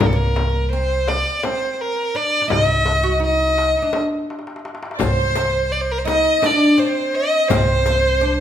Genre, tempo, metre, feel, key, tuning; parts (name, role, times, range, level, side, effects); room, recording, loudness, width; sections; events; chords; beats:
Turkish makam ensemble; 168 BPM (eighths); 7/8; straight; A4 = 444 Hz
rich violin; melody; 0.0-8.4 s; A4 to Eb5+27c; -18 LUFS; equal
oud; second line; 0.0-8.4 s; Bb3 to F#4; -24 LUFS; right 1 dB
upright bass; bass; 0.0-8.4 s; C2; -23 LUFS; equal
darbuka; percussion; 0.0-8.0 s; -26 LUFS; left 1 dB
frame drum; percussion; 0.0-8.0 s; -25 LUFS; left 4 dB
warm symphonic violin section; second line; 4.9-8.4 s; C5 to Eb5; -25 LUFS; right 1 dB
riq; percussion; 5.0-8.0 s; -30 LUFS; left 4 dB
moderate recital hall reverb, RT60 1.3 s; minimal, uncompressed stereo recording; -16 LUFS; side -10 dB against mid
0.0-8.4 A section
drum fill 4.3-5.0
| 0.01 0.37 0.72 1.08 1.44 1.79 2.15 | 2.51 2.87 3.22 3.58 3.94 4.29 4.65 | 5.01 5.36 5.72 6.08 6.43 6.79 7.15 | 7.50 7.86 8.22